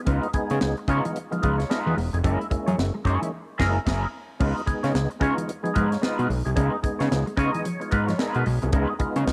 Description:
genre	funk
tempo	111 BPM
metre	4/4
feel	swing 60% on 16ths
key	Db mixolydian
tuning	A4 = 440 Hz
part	mellow electric guitar	riff	0.0-9.3 s	Fb3 to Db4	-36 LUFS	equal	none
part	twangy electric guitar	accompaniment	0.1-9.3 s	Eb4 to Db5	-33 LUFS	equal	wah
part	percussive tonewheel organ	stabs	0.1-9.3 s	Ab3 to Eb5	-32 LUFS	equal	overdrive, chorus vibrato, slow rotary speaker
part	fat analog bass	bass	0.1-9.3 s	Fb1 to Db3	-26 LUFS	equal	none
part	tight funk drum kit	drums	0.1-9.3 s	crash cymbal, hi-hat, kick drum, snare drum	-30 LUFS	equal	none
room	light reverb, studio reverb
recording	none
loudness	-25 LUFS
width	mono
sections	0.0-4.4 A section; 4.4-9.3 B section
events	band accent 3.3-4.4; tonewheel organ fill 7.1-8.7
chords	0.0 Db9; 2.2 Gb9; 4.4 Db9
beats	| 0.07 0.61 1.16 1.70 | 2.24 2.78 3.32 3.86 | 4.41 4.95 5.49 6.03 | 6.57 7.11 7.65 8.19 | 8.73 9.27

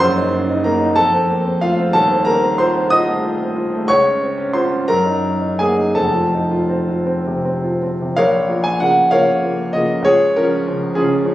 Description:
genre	classical, romantic character piece for solo piano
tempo	54-67 BPM (dotted quarters)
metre	6/8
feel	rubato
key	Bb minor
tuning	A4 = 440 Hz
part	warm grand piano	solo	0.0-11.3 s	Eb1 to Eb6	-14 LUFS	equal	none
room	moderate recital hall reverb, RT60 1.4 s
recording	recorded on a phone in the room, studio reverb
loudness	-14 LUFS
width	side -14 dB against mid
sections	0.0-8.2 A section; 8.2-11.3 B section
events	none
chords	0.0 Ebm/Gb; 1.0 F; 2.0 F7/Eb; 3.9 Dbmaj7; 4.9 Ebm/Gb; 6.0 F; 8.2 Bbm; 10.0 Db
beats	| 0.04 0.99 | 1.96 2.93 | 3.90 4.90 | 5.97 7.09 | 8.17 9.12 | 10.04 10.96

